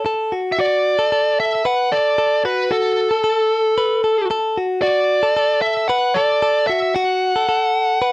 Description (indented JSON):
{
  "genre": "indie pop",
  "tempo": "113 BPM",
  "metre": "4/4",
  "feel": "straight",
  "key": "unclear",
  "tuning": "A4 = 441 Hz",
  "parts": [
    { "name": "direct-recorded clean electric guitar", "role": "arpeggios", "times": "0.0-8.1 s", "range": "F#4 to B4", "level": "-20 LUFS", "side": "left 1 dB", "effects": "slapback echo" },
    { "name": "bluesy overdriven lead guitar", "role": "melody", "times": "0.5-8.1 s", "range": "A4 to F#5", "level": "-16 LUFS", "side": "equal", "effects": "distortion" }
  ],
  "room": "light reverb",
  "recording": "dry, close 1970s-style studio recording",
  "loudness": "-15 LUFS",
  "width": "side -22 dB against mid",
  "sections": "0.6-8.1 A section",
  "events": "none",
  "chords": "0.0 F#m; 0.6 Bm7 (rootless)"
}